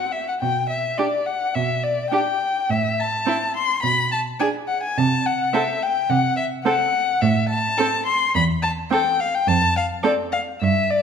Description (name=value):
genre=quick classical-period movement for string quartet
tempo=106 BPM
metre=4/4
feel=rubato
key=unclear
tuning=A4 = 440 Hz
part: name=warm violin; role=melody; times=0.0-11.0 s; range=D5 to C6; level=-20 LUFS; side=left 4 dB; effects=none
part: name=rich cello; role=bass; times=0.4-11.0 s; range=E2 to C3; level=-24 LUFS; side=right 4 dB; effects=none
part: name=warm violin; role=second line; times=1.0-10.1 s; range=E4 to A4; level=-27 LUFS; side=right 3 dB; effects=none
part: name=rich viola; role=accompaniment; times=1.0-10.1 s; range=C4 to D4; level=-28 LUFS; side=right 6 dB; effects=none
room=wet recital hall reverb, RT60 1.5 s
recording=minimal, uncompressed stereo recording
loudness=-19 LUFS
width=side -7 dB against mid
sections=0.0-11.0 A section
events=none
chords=0.4 G/B; 2.7 Am; 3.8 G#m/B; 5.0 Am/C; 7.2 Am; 9.5 F